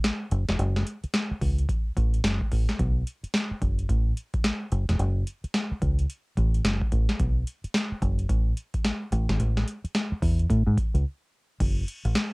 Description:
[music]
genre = R&B, new jack swing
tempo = 109 BPM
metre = 4/4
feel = swing 62% on 16ths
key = unclear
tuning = A4 = 441 Hz
[part]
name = booming analog drum machine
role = drums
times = 0.0-12.3 s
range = crash cymbal, hi-hat, kick drum, snare drum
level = -26 LUFS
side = equal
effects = overdrive, cassette tape
[part]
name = deep dub fingered electric bass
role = bass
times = 0.3-12.1 s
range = E1 to A2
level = -24 LUFS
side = equal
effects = none
[sound]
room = little or no reverb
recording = home recording on cassette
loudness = -24 LUFS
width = side -29 dB against mid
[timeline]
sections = 0.0-11.6 A section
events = break 11.1-11.6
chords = none

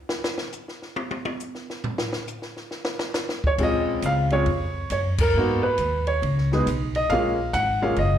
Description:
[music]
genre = jazz piano trio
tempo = 137 BPM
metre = 4/4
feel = swing 65% on 8ths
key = Bb minor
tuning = A4 = 440 Hz
[part]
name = compact cocktail drum kit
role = drums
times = 0.1-8.1 s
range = crash cymbal, hi-hat, kick drum, ride cymbal, snare drum, toms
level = -29 LUFS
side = equal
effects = none
[part]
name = clear baby grand piano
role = melody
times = 3.5-8.2 s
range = Ab3 to Gb5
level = -22 LUFS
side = equal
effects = slapback echo
[part]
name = upright bass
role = bass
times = 3.6-8.2 s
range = Gb1 to Ab2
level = -25 LUFS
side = equal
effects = none
[sound]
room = light reverb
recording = live gig heard through the venue's PA, club reverb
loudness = -22 LUFS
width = side -10 dB against mid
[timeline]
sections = 0.0-3.6 A section; 3.6-8.2 B section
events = grand piano solo 0.0-3.6; drum solo 0.0-3.6; band accent 5.1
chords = 0.0 N.C.; 3.6 Bbm9; 5.3 Abm7; 6.2 Db5; 7.1 Gbmaj7

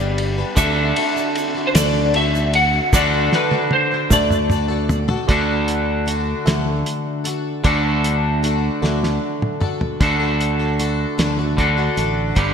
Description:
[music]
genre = folk rock and heartland rock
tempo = 51 BPM (dotted quarters)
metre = 6/8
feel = straight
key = D major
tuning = A4 = 440 Hz
[part]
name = electric slide guitar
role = melody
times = 0.0-5.0 s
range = B4 to F#5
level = -20 LUFS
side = equal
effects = ensemble chorus, ping-pong delay
[part]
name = picked plugged-in swing-style acoustic guitar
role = accompaniment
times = 0.0-12.5 s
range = G2 to B4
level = -25 LUFS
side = left 7 dB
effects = analog chorus
[part]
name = reed electric piano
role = accompaniment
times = 0.0-9.6 s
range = F#4 to E5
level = -32 LUFS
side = right 5 dB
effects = fast tremolo
[part]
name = electric guitar at the edge of break-up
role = riff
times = 0.0-12.5 s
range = G2 to B4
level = -22 LUFS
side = right 2 dB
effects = none
[part]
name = fingered electric bass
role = bass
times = 0.0-12.5 s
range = G1 to D2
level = -21 LUFS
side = equal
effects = none
[part]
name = cloth-damped thuddy drum kit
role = drums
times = 0.2-12.5 s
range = hi-hat, kick drum, ride cymbal, snare drum, toms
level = -22 LUFS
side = equal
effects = gated reverb
[part]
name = tube shaker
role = percussion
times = 0.6-5.0 s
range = none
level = -30 LUFS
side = right 12 dB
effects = none
[sound]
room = moderate lush hall reverb, RT60 1.8 s, small room ambience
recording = bright 1980s-style digital production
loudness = -16 LUFS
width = side -7 dB against mid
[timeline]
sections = 0.0-5.3 A section; 5.3-10.0 B section; 10.0-12.5 C section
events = drum fill 2.9-5.3, 8.8-10.0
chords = 0.0 G; 0.6 D

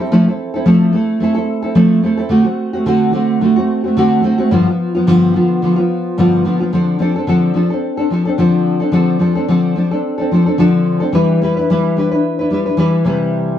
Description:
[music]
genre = indie pop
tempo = 109 BPM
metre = 4/4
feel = swing 55% on 16ths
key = D dorian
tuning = A4 = 440 Hz
[part]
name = nylon-string guitar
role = solo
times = 0.0-13.6 s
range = G2 to B4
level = -12 LUFS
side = equal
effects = lush chorus, vibrato effect, slapback echo
[sound]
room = light reverb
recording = dry, close 1970s-style studio recording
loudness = -12 LUFS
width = side -10 dB against mid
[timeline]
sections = 0.0-6.7 A section; 6.7-13.6 B section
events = none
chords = 0.1 Fmaj7; 2.3 D7; 4.5 G7; 6.7 Dm7; 11.1 Em7; 13.1 Cmaj7

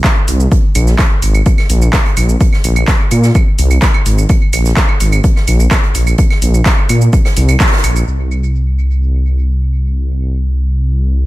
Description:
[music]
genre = melodic techno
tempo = 127 BPM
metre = 4/4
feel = straight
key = unclear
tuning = A4 = 440 Hz
[part]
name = big rock drum kit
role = drums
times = 0.0-8.0 s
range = hi-hat, snare drum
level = -27 LUFS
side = right 2 dB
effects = high-pass filter on hats, small room ambience, high-pass filter on snare, high-pass filter on room
[part]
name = deep house drum kit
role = drums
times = 0.0-8.1 s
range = claves, handclaps, hi-hat, shaker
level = -18 LUFS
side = right 2 dB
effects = overdrive, small room ambience, tape echo
[part]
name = electronic kick drum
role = drums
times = 0.0-7.7 s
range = none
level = -12 LUFS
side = equal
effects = overdrive, small room ambience
[part]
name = dark detuned saw bass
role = bass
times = 0.3-11.3 s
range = Ab1 to Bb2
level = -11 LUFS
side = equal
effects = sidechain pumping
[sound]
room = studio reverb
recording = echo-heavy mix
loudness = -10 LUFS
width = side -17 dB against mid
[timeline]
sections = 0.0-8.1 A section; 8.1-11.3 B section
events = band accent 7.6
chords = none

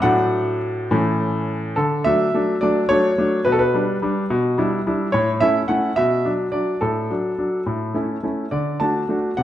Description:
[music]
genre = classical-period piano sonatina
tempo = 71 BPM (dotted quarters)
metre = 6/8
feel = straight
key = D major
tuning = A4 = 440 Hz
[part]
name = clear baby grand piano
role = solo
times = 0.0-9.4 s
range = A2 to A5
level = -18 LUFS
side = equal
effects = none
[sound]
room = wet recital hall reverb, RT60 1.4 s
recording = dark, warm production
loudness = -18 LUFS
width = side -12 dB against mid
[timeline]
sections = 0.0-1.8 A section; 1.8-9.4 B section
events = none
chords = 0.0 D/A; 0.9 A; 1.8 D; 3.5 G/B; 4.3 Em7/B; 5.1 A; 6.0 Bm; 6.8 D/A; 7.7 A; 8.5 D

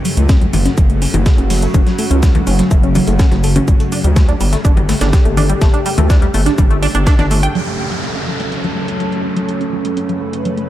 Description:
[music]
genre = melodic techno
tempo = 124 BPM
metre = 4/4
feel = straight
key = F# phrygian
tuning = A4 = 440 Hz
[part]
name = evolving wavetable pad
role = sustained chords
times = 0.0-10.7 s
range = C#3 to B4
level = -22 LUFS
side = equal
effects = chorus, built-in reverb, sidechain pumping
[part]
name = bowed-like drone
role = drone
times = 0.0-10.7 s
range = F#2 to C#3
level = -26 LUFS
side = right 1 dB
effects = built-in reverb, sidechain pumping
[part]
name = tight sequenced synth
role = arpeggios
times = 0.1-10.6 s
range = F#3 to G5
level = -20 LUFS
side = equal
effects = chorus, phaser, sidechain pumping, dub echo
[part]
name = breakbeat sampler-style drum kit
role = drums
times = 0.1-7.4 s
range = hi-hat, shaker, snare drum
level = -29 LUFS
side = equal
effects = high-pass filter on perc, high-pass filter on hats, high-pass filter on snare, high-pass filter on room
[part]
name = electronic hi-hat and congas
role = drums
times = 0.1-10.7 s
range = none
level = -22 LUFS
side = left 2 dB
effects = sidechain pumping on perc, low-pass filter on perc, sidechain pumping on hats, low-pass filter on hats, low-pass filter on room
[part]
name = gritty driven synth bass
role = bass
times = 0.2-7.5 s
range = F#1 to D2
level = -15 LUFS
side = equal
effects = sidechain pumping
[part]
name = electronic kick drum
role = drums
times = 0.3-7.2 s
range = none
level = -12 LUFS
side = equal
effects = none
[part]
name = downlifter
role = sound effects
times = 7.5-10.7 s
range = none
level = -24 LUFS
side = equal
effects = none
[sound]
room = light reverb, digital ambience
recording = dark, warm production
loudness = -11 LUFS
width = side -13 dB against mid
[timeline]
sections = 0.0-7.6 A section; 7.6-10.7 B section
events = filter sweep on synth arpeggio sound 0.0-7.6, 7.6-10.7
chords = 0.0 F#m; 3.7 Gsus2; 7.6 F#m

